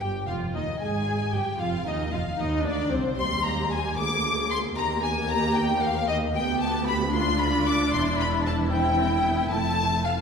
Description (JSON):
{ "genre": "quick classical-period movement for string orchestra", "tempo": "76 BPM (dotted quarters)", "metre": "6/8", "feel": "straight", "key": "C major from 6.3 s", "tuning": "A4 = 439 Hz", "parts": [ { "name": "warm studio violin section", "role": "melody", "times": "0.0-10.2 s", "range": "C5 to D6", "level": "-28 LUFS", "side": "left 3 dB", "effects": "none" }, { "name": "warm chamber violin section", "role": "second line", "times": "0.0-10.1 s", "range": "C5 to D6", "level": "-31 LUFS", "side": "left 3 dB", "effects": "none" }, { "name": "rich studio viola section", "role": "accompaniment", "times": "0.0-10.2 s", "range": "G3 to Ab4", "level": "-28 LUFS", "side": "right 1 dB", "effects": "none" }, { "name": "rich chamber double bass section", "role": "bass", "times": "0.0-10.2 s", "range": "E1 to Eb2", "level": "-31 LUFS", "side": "right 1 dB", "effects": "none" }, { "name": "warm chamber cello section", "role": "bass", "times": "0.0-10.2 s", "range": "C2 to Ab2", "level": "-32 LUFS", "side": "right 2 dB", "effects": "none" } ], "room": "wet scoring stage reverb, RT60 1.7 s", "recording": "heard from further back in the room", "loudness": "-23 LUFS", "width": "side -6 dB against mid", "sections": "0.0-10.2 A section", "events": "none", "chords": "0.0 Ebadd9; 0.8 N.C.; 1.6 Cm; 3.2 Eb; 4.0 Bb7/D; 4.8 Eb; 6.3 G7/D; 7.9 C/E; 9.5 F" }